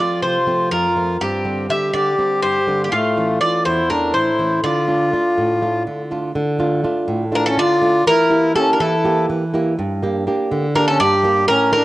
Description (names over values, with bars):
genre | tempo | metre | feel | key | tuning
greek folk, Greek bouzouki band | 245 BPM (eighths) | 7/8 | straight | D minor, D harmonic minor from 6.4 s | A4 = 441 Hz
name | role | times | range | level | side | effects
Greek bouzouki | melody | 0.0-11.8 s | F4 to E5 | -18 LUFS | equal | cassette tape
accordion | second line | 0.0-11.8 s | A3 to G4 | -19 LUFS | left 1 dB | none
flamenco guitar | accompaniment | 0.0-11.8 s | E2 to G4 | -20 LUFS | right 1 dB | none
room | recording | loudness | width
moderate spring reverb, RT60 2.5 s | home recording on cassette | -15 LUFS | side -17 dB against mid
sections
0.0-6.4 A section; 6.4-11.8 B section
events
none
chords
0.0 F; 1.2 Gsus4; 2.9 A; 4.6 Dm; 8.1 Edim; 9.8 Gm